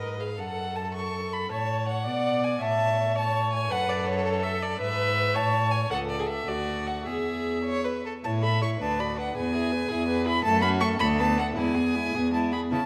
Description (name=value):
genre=quick classical-period movement for string quartet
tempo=107 BPM (dotted quarters)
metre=6/8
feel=rubato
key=unclear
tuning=A4 = 444 Hz
part: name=warm violin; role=melody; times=0.0-12.9 s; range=C#5 to C#6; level=-32 LUFS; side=equal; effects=none
part: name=warm violin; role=second line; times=0.0-12.8 s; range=E4 to E5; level=-36 LUFS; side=equal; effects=none
part: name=warm viola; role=accompaniment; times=0.0-12.8 s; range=G#3 to E5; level=-33 LUFS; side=equal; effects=none
part: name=rich cello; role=bass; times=0.0-12.8 s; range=C#2 to C#3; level=-31 LUFS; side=equal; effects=none
room=moderate concert hall reverb, RT60 2.0 s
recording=none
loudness=-27 LUFS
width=mono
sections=0.0-8.2 A section; 8.2-12.9 B section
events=none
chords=0.4 F#m; 1.5 A; 2.1 Bm6; 2.6 A; 3.7 F#m; 4.8 E/G#; 5.3 A; 5.9 A/C#; 6.5 D; 7.1 E; 8.2 A; 8.8 Bm/D; 9.4 E; 10.4 F#m; 11.0 Bm7/D; 11.6 E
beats=| 0.39 0.95 | 1.51 2.06 | 2.61 3.16 | 3.71 4.26 | 4.80 5.35 | 5.90 6.47 | 7.06 7.65 | 8.24 8.80 | 9.36 9.90 | 10.45 11.00 | 11.57 12.14 | 12.71